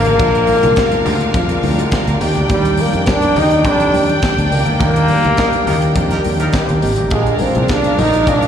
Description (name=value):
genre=disco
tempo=104 BPM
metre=4/4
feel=straight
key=unclear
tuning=A4 = 438 Hz
part: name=warm trombone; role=melody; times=0.0-8.5 s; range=G3 to Eb4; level=-16 LUFS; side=equal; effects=slapback echo
part: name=rich studio string section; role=second line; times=0.0-8.5 s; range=D4 to G5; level=-21 LUFS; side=right 1 dB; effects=slapback echo
part: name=warm grand piano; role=accompaniment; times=0.0-8.5 s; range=D3 to Ab4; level=-22 LUFS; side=left 1 dB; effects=slapback echo
part: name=mellow tonewheel organ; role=sustained chords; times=0.0-8.5 s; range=G4 to Bb5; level=-26 LUFS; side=right 1 dB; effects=none
part: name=fingered electric bass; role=bass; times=0.0-8.5 s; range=Ab1 to F2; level=-18 LUFS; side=equal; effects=none
part: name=tight funk drum kit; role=drums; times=0.1-8.5 s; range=hi-hat, kick drum, snare drum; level=-20 LUFS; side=equal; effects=none
part: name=congas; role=percussion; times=0.1-8.4 s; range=none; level=-24 LUFS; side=left 5 dB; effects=none
part: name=warm horn section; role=stabs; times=5.4-6.8 s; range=G3 to Bb4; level=-25 LUFS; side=equal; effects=slapback echo
room=light reverb, studio reverb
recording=live gig heard through the venue's PA, recital hall reverb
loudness=-12 LUFS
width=side -8 dB against mid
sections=0.0-8.5 A section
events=band accent 4.8-7.1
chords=0.0 Bb7; 2.2 Ebmaj7; 7.1 Bb7